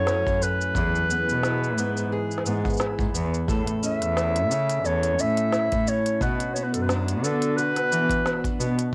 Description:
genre	folktronica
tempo	88 BPM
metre	4/4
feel	swing 56% on 16ths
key	unclear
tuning	A4 = 440 Hz
part	mellow clarinet	melody	0.0-8.6 s	A4 to E5	-28 LUFS	equal	cassette tape
part	warbly tape-like pad	sustained chords	0.0-8.9 s	E3 to B4	-36 LUFS	equal	chorus, built-in reverb
part	picked steel-string acoustic guitar	arpeggios	0.0-8.9 s	F#2 to A4	-33 LUFS	equal	tape echo
part	rich cello	bass	0.0-8.8 s	E2 to E3	-29 LUFS	equal	transformer saturation
part	organic electronic drum kit	drums	0.1-8.9 s	hi-hat, shaker, snare drum	-33 LUFS	equal	none
part	kick drum	drums	0.3-8.6 s	none	-32 LUFS	equal	none
room	light reverb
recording	home recording on cassette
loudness	-24 LUFS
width	mono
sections	0.0-8.9 A section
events	none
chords	0.0 F#m7; 0.8 E; 3.5 A; 6.2 Bm

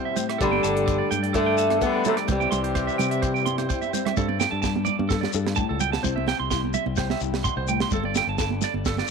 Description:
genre	highlife guitar band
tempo	128 BPM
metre	4/4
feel	straight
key	unclear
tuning	A4 = 440 Hz
part	flamenco guitar	accompaniment	0.0-9.1 s	G2 to A4	-31 LUFS	left 13 dB	none
part	combo organ	sustained chords	0.0-4.1 s	A3 to G4	-35 LUFS	equal	none
part	clean electric guitar	arpeggios	0.0-9.1 s	A4 to C6	-28 LUFS	right 11 dB	tape echo
part	tight funk drum kit	drums	0.2-9.1 s	hi-hat, kick drum, rim click, snare drum	-30 LUFS	right 3 dB	none
part	congas	percussion	0.2-9.1 s	none	-31 LUFS	right 11 dB	none
part	shekere	percussion	0.2-9.1 s	none	-34 LUFS	left 8 dB	none
part	fingerpicked acoustic archtop guitar	melody	0.4-3.7 s	D3 to B3	-24 LUFS	equal	none
part	edgy tenor saxophone	second line	0.4-3.7 s	C3 to D3	-31 LUFS	left 11 dB	none
part	fingered electric bass	bass	0.4-9.0 s	G1 to C3	-29 LUFS	left 1 dB	none
room	moderate spring reverb, RT60 1.2 s, small room ambience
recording	1960s-style stereo with parts hard left and right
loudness	-21 LUFS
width	side -5 dB against mid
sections	0.0-4.2 A section; 4.2-9.1 B section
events	drum fill 3.8-4.2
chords	0.4 Gsus2; 2.3 C; 4.2 Gsus2; 6.0 C; 7.9 Gsus2

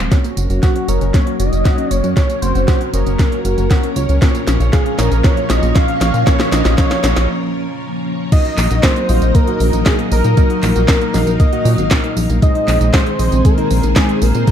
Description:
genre	italo disco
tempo	117 BPM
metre	4/4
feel	straight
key	unclear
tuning	A4 = 440 Hz
part	string machine, full ensemble	sustained chords	0.0-14.5 s	Eb3 to F5	-22 LUFS	left 1 dB	ensemble chorus
part	soft round pluck	arpeggios	0.0-14.5 s	Ab3 to Gb5	-25 LUFS	equal	chorus, ping-pong delay
part	chorused synth bass	bass	0.0-14.5 s	Gb1 to Bb2	-15 LUFS	equal	none
part	chorused polysynth	stabs	0.1-14.5 s	Bb2 to F5	-25 LUFS	right 2 dB	none
part	electronic kick drum	drums	0.1-14.5 s	none	-13 LUFS	equal	overdrive, small room ambience
part	house drum kit	drums	0.1-14.5 s	crash cymbal, handclaps, hi-hat, snare drum, tambourine	-21 LUFS	equal	small room ambience
part	wide unison lead	melody	0.6-14.5 s	Gb4 to F5	-20 LUFS	equal	ping-pong delay
room	light reverb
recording	dark, warm production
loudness	-12 LUFS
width	side -9 dB against mid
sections	0.1-8.3 A section; 8.3-14.5 B section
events	drum fill 0.1-7.3; break 7.3-8.3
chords	0.1 Gb; 4.2 Bbm; 8.3 Ebm/Bb; 12.4 Ab/Bb

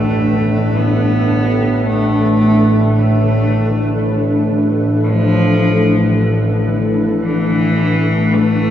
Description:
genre	dark ambient drone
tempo	56 BPM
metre	4/4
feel	straight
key	unclear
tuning	A4 = 440 Hz
part	rich cello	melody	0.0-8.7 s	E3 to B3	-17 LUFS	equal	tape echo
part	granular cloud pad	sustained chords	0.0-8.7 s	D4 to B4	-18 LUFS	equal	built-in reverb
part	overtone-sweeping drone	drone	0.0-8.7 s	A1 to A2	-15 LUFS	equal	chorus, built-in reverb
room	wet cathedral reverb, RT60 6.2 s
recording	worn, warbling old tape, cassette tape, warbly pitch drift, small room ambience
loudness	-12 LUFS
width	side -10 dB against mid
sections	0.0-8.7 A section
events	none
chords	0.0 Asus2

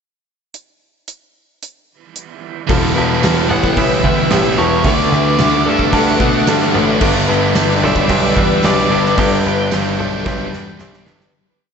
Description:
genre	rock, shoegaze and dream pop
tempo	111 BPM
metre	4/4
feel	straight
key	G major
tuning	A4 = 440 Hz
part	gated 80s drum kit	drums	0.5-11.3 s	crash cymbal, hi-hat, kick drum, snare drum	-20 LUFS	right 1 dB	none
part	soft string machine	sustained chords	2.7-11.3 s	A4 to E6	-22 LUFS	left 1 dB	ensemble chorus
part	electric guitar through a small old amp	arpeggios	2.7-11.3 s	G4 to B4	-23 LUFS	left 2 dB	ensemble chorus, analog delay
part	biting overdriven guitar	riff	2.7-11.3 s	G2 to E4	-20 LUFS	right 9 dB	reverse reverb
part	thick fuzz guitar	riff	2.7-11.3 s	E2 to D4	-19 LUFS	left 8 dB	distortion, lush chorus
part	bright concert grand piano	bass	2.7-11.3 s	E1 to B2	-18 LUFS	right 1 dB	none
part	tambourine	percussion	3.2-10.9 s	none	-34 LUFS	right 15 dB	none
part	octave-fuzz lead guitar	melody	3.5-10.8 s	C#5 to G5	-22 LUFS	right 1 dB	distortion, analog delay
room	wet huge ambient reverb, RT60 4.6 s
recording	dreamy mix soaked in reverb, nothing above 8.0 kHz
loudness	-12 LUFS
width	side -6 dB against mid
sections	0.5-2.7 pickup bar; 2.7-11.3 A section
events	fade-out 9.2-11.3; drum fill 10.3-11.3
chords	0.5 N.C.; 2.7 Em; 4.9 Dadd9; 7.0 G

